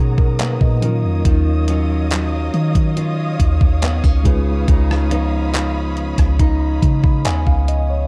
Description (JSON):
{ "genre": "contemporary R&B", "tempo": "70 BPM", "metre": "4/4", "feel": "straight", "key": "unclear", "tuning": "A4 = 440 Hz", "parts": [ { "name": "mellow tine electric piano", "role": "accompaniment", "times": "0.0-8.1 s", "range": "E#3 to B5", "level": "-28 LUFS", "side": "equal", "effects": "none" }, { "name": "warm studio string section", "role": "sustained chords", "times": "0.0-8.1 s", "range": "C#5 to D#6", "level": "-32 LUFS", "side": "equal", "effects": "sidechain pumping" }, { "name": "nylon-string guitar", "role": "arpeggios", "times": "0.0-8.1 s", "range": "B2 to E#4", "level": "-27 LUFS", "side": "equal", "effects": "tape echo" }, { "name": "soft 808-style bass", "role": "bass", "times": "0.0-8.1 s", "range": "C#2 to D#3", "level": "-20 LUFS", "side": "equal", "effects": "none" }, { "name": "detuned 8-bit digital drum machine", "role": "drums", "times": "0.2-7.9 s", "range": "handclaps, hi-hat, kick drum, rim click", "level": "-19 LUFS", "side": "equal", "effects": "none" }, { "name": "mallet-like synth pluck", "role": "texture", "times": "5.1-7.7 s", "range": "C#5", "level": "-40 LUFS", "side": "equal", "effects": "none" } ], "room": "little or no reverb", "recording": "dark, warm production", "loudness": "-17 LUFS", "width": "mono", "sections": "0.0-8.1 A section", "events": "none", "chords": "0.0 Bmaj9; 0.8 D#m9; 4.3 C#9" }